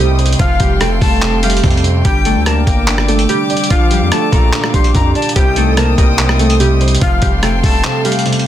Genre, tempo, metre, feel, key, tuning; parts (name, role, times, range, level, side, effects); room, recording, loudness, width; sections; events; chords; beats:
hip hop, trap; 145 BPM; 4/4; half-time; A4 = 440 Hz
glassy digital keys; melody; 0.0-8.5 s; F3 to Bb4; -18 LUFS; equal; chorus, low-pass filter, plate reverb, ping-pong delay
warm grand piano; accompaniment; 0.0-8.5 s; Bb2 to D5; -19 LUFS; right 3 dB; low-pass filter
warm studio string section; sustained chords; 0.0-8.5 s; G4 to Eb6; -23 LUFS; left 2 dB; plate reverb
distorted 808-style bass; bass; 0.0-7.8 s; F1 to F2; -15 LUFS; equal; distortion
boom bap sampler-style drum kit; drums; 0.2-8.5 s; handclaps, hi-hat, kick drum, rim click; -15 LUFS; equal
bright jazz flute; second line; 0.4-8.2 s; F5 to C6; -21 LUFS; left 6 dB; plate reverb, ping-pong delay
light reverb; dense, heavily limited modern master; -10 LUFS; side -11 dB against mid
0.0-8.5 A section
kick muted 7.8-8.5
0.4 Fadd9; 2.0 Gm; 3.7 Bb; 5.4 Cm; 7.0 Fadd9
| 0.39 0.81 1.22 1.64 | 2.05 2.46 2.88 3.29 | 3.71 4.12 4.53 4.95 | 5.36 5.77 6.19 6.60 | 7.01 7.43 7.84 8.26